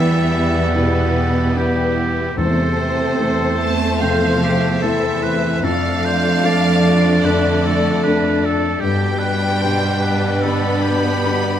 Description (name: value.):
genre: cinematic, emotional film score for orchestra.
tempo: 74 BPM.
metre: 4/4.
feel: rubato.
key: A minor.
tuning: A4 = 440 Hz.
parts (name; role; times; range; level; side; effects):
warm symphonic violin section; melody; 0.0-11.6 s; B4 to B5; -25 LUFS; left 2 dB; none.
warm oboe; second line; 0.0-11.6 s; G4 to D5; -24 LUFS; right 2 dB; none.
warm studio violin section; second line; 0.0-11.6 s; G4 to D5; -26 LUFS; left 3 dB; none.
felt-muted upright piano; accompaniment; 0.0-11.6 s; E2 to A4; -24 LUFS; left 2 dB; none.
warm symphonic viola section; accompaniment; 0.0-11.6 s; G3 to E4; -26 LUFS; right 2 dB; none.
warm French horn section; sustained chords; 0.0-11.6 s; B2 to D4; -24 LUFS; left 3 dB; none.
concert harp; arpeggios; 0.0-11.6 s; E2 to B5; -26 LUFS; left 6 dB; none.
rich symphonic cello section; bass; 0.0-11.6 s; B2 to B3; -22 LUFS; right 3 dB; none.
warm symphonic double bass section; bass; 0.0-11.6 s; E2 to G2; -23 LUFS; right 3 dB; none.
timpani; percussion; 2.4-3.6 s; E2; -25 LUFS; equal; none.
room: moderate scoring stage reverb, RT60 1.7 s.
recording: none.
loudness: -15 LUFS.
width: side -10 dB against mid.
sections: 0.0-11.6 A section.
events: none.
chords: 0.0 Em; 2.4 Am/E; 5.6 Dm/F; 8.8 G.